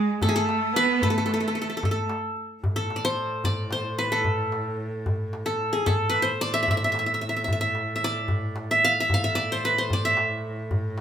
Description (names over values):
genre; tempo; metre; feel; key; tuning
Arabic maqam ensemble; 74 BPM (dotted quarters); 6/8; straight; A maqam nahawand; A4 = 441 Hz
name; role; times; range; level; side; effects
qanun; melody; 0.0-11.0 s; G#4 to F5; -24 LUFS; equal; none
bright symphonic cello section; second line; 0.0-2.1 s; G#3 to B3; -26 LUFS; right 3 dB; none
darbuka; percussion; 0.2-11.0 s; none; -28 LUFS; equal; none
clear cello; drone; 2.6-11.0 s; A2; -33 LUFS; right 1 dB; none
room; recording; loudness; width
wet studio reverb, RT60 0.6 s; band playing live in one room; -22 LUFS; side -9 dB against mid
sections
0.0-2.6 A section; 2.6-11.0 B section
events
none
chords
none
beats
0.22 | 1.02 1.83 | 2.64 3.44 | 4.25 5.06 | 5.87 6.67 | 7.48 8.29 | 9.10 9.90 | 10.71